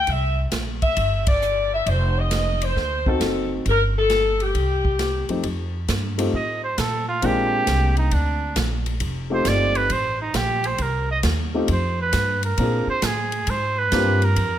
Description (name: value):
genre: jazz, big band swing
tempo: 134 BPM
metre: 4/4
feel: swing 67% on 8ths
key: F mixolydian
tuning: A4 = 440 Hz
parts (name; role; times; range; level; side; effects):
- bright saxophone section; melody; 0.0-5.3 s; G4 to E5; -22 LUFS; left 2 dB; none
- upright bass; bass; 0.0-14.6 s; F1 to Bb2; -24 LUFS; equal; none
- swinging big-band drum kit; drums; 0.1-14.5 s; hi-hat, kick drum, ride cymbal, snare drum; -28 LUFS; right 1 dB; none
- warm concert grand piano; accompaniment; 3.1-14.2 s; F2 to A4; -25 LUFS; left 2 dB; none
- clear trumpet; melody; 6.4-14.6 s; D4 to Eb5; -23 LUFS; right 3 dB; none
room: light reverb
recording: none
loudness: -19 LUFS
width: side -11 dB against mid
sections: 0.0-5.4 A section; 5.4-14.6 B section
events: band accent 1.2; trumpet solo 5.4-14.6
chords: 0.1 C7; 1.9 Cmadd11/F; 2.8 D7b9; 3.7 Gsus2; 4.5 C5; 5.4 F; 7.2 Bb7; 9.0 F7; 10.8 Cm; 11.7 G7/F; 12.6 Bb7